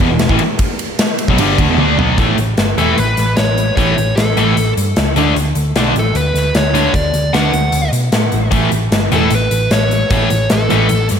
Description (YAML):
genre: hard rock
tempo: 151 BPM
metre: 4/4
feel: straight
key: A mixolydian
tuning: A4 = 440 Hz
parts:
  - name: sludgy distorted guitar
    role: riff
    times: 0.0-10.9 s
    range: E2 to D4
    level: -20 LUFS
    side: right 8 dB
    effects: overdrive, slapback echo
  - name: tight distorted guitar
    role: riff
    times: 0.0-10.9 s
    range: E2 to D4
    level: -20 LUFS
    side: left 10 dB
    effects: distortion
  - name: hollow-body short-scale picked electric bass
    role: bass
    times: 0.0-11.2 s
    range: E1 to B2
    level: -17 LUFS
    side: equal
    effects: none
  - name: big rock drum kit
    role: drums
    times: 0.0-11.2 s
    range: hi-hat, kick drum, ride cymbal, snare drum, toms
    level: -16 LUFS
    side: left 1 dB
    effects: none
  - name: dark smooth lead guitar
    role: melody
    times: 2.8-11.1 s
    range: A4 to F#5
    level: -19 LUFS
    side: equal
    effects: overdrive, tape echo
room: moderate recital hall reverb, RT60 1.6 s, studio reverb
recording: big arena sound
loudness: -11 LUFS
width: side -7 dB against mid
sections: 0.0-2.2 A section; 2.2-11.2 B section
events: drum fill 1.8-2.2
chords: 0.0 E5; 2.2 A; 5.2 D5; 8.5 A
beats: 0.20 | 0.60 1.00 1.39 1.79 | 2.19 2.58 2.98 3.38 | 3.78 4.17 4.57 4.97 | 5.36 5.76 6.16 6.55 | 6.95 7.34 7.74 8.13 | 8.53 8.93 9.32 9.72 | 10.11 10.51 10.90